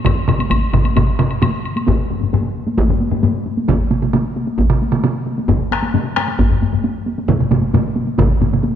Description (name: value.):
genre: japanese traditional, taiko drum ensemble.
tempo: 133 BPM.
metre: 4/4.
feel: straight.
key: none.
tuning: none.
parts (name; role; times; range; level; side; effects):
solo taiko drums; percussion; 0.0-8.6 s; none; -19 LUFS; right 4 dB; none.
taiko ensemble; percussion; 0.1-8.7 s; none; -21 LUFS; equal; none.
taiko ensemble; percussion; 0.1-8.6 s; none; -19 LUFS; left 5 dB; none.
taiko ensemble; percussion; 0.1-8.3 s; none; -20 LUFS; right 1 dB; none.
woodblock; percussion; 0.1-1.9 s; none; -25 LUFS; left 3 dB; none.
room: moderate concert hall reverb, RT60 2.2 s.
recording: dark, warm production.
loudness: -14 LUFS.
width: side -9 dB against mid.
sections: 0.0-1.9 A section; 1.9-8.8 B section.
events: none.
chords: none.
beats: | 0.05 0.51 0.96 1.42 | 1.87 2.32 2.78 3.23 | 3.69 4.14 4.59 5.04 | 5.49 5.94 6.39 6.84 | 7.29 7.75 8.19 8.64.